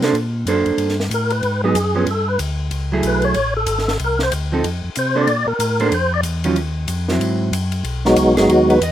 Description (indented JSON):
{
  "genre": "soul jazz organ trio",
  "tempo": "187 BPM",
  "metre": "4/4",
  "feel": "swing 61% on 8ths",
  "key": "unclear",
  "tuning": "A4 = 440 Hz",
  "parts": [
    { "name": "vintage hollow-body jazz guitar", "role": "accompaniment", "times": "0.0-8.9 s", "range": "D#3 to D#5", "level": "-19 LUFS", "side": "right 3 dB", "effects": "none" },
    { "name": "mellow tonewheel organ", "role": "bass", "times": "0.0-8.9 s", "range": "G#1 to B#2", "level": "-22 LUFS", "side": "left 1 dB", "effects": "stopped rotary speaker" },
    { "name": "compact cocktail drum kit", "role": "drums", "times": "0.0-8.9 s", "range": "hi-hat, ride cymbal, snare drum", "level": "-27 LUFS", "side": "left 2 dB", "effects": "none" },
    { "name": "percussive tonewheel organ", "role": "melody", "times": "1.1-8.8 s", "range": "F#3 to D5", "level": "-17 LUFS", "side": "equal", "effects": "slow rotary speaker, overdrive, chorus vibrato" }
  ],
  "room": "studio reverb",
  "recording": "rough home demo mix",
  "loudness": "-16 LUFS",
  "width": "side -11 dB against mid",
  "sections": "0.0-7.9 A section; 7.9-8.9 A section",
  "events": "tonewheel organ solo 0.0-7.9; hollow-body jazz guitar solo 7.9-8.9",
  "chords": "0.1 A#maj9; 1.4 G#m7; 2.1 G5; 2.7 F#m9; 4.0 Cmadd9; 4.6 F; 5.3 A#maj7(no3); 6.6 D#madd9; 7.2 G#aug7; 7.9 G#m7"
}